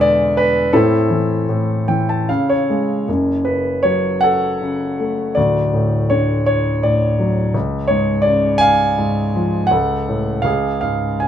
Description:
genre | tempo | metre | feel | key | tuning
classical, lyrical solo piano | 74-86 BPM | 3/4 | rubato | A minor, F# harmonic minor from 3.1 s | A4 = 440 Hz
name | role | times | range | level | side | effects
warm grand piano | solo | 0.0-11.3 s | D1 to A5 | -14 LUFS | equal | none
room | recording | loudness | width
light reverb | minimal, uncompressed stereo recording | -15 LUFS | side -9 dB against mid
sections
0.0-3.1 A section; 3.1-11.3 B section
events
grand piano fill 1.5-3.1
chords
0.0 E7; 0.7 Am; 2.3 C#5; 3.1 F#m; 5.4 D; 7.5 C#; 9.7 F#m/C#; 10.5 C#5

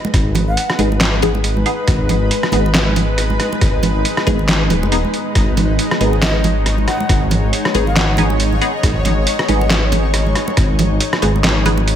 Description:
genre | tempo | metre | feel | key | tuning
deep dubstep | 138 BPM | 4/4 | swing 57% on 16ths, half-time | G# minor | A4 = 440 Hz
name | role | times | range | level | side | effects
granular cloud pad | sustained chords | 0.0-12.0 s | G#3 to C#5 | -21 LUFS | left 1 dB | built-in reverb
congas | percussion | 0.0-11.9 s | none | -23 LUFS | right 4 dB | none
dark detuned saw bass | bass | 0.1-12.0 s | D#1 to G#1 | -17 LUFS | equal | none
electronic kick drum | drums | 0.1-10.7 s | none | -17 LUFS | equal | studio reverb
trip hop sampler-style drum kit | drums | 0.1-12.0 s | handclaps, hi-hat, rim click, snare drum | -19 LUFS | equal | studio reverb
bright reedy shakuhachi | melody | 0.5-0.8, 6.2-8.2 s | D#5 to F#5 | -27 LUFS | left 2 dB | dub echo
filtered dub chord stab | stabs | 0.8-11.8 s | B3 to G#4 | -22 LUFS | left 2 dB | phaser, analog chorus, dub echo
room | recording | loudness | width
light reverb, digital ambience | none | -13 LUFS | side -10 dB against mid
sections
0.0-12.0 A section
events
kick drops out 11.4-12.0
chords
0.0 G#m

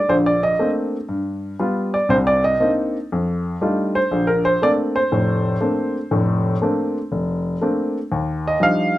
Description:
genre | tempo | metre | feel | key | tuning
solo jazz | 120 BPM | 4/4 | swing 69% on 8ths | Bb major | A4 = 440 Hz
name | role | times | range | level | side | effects
warm baby grand piano | solo | 0.0-9.0 s | F1 to F5 | -17 LUFS | equal | none
room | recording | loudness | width
wet small room reverb, RT60 0.6 s | rough home demo mix | -17 LUFS | side -15 dB against mid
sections
0.0-8.1 A section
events
none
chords
0.1 Bbmaj9; 1.1 G7; 2.1 Cm9; 3.1 F13; 4.1 Bbmaj9; 8.1 Ebmaj9

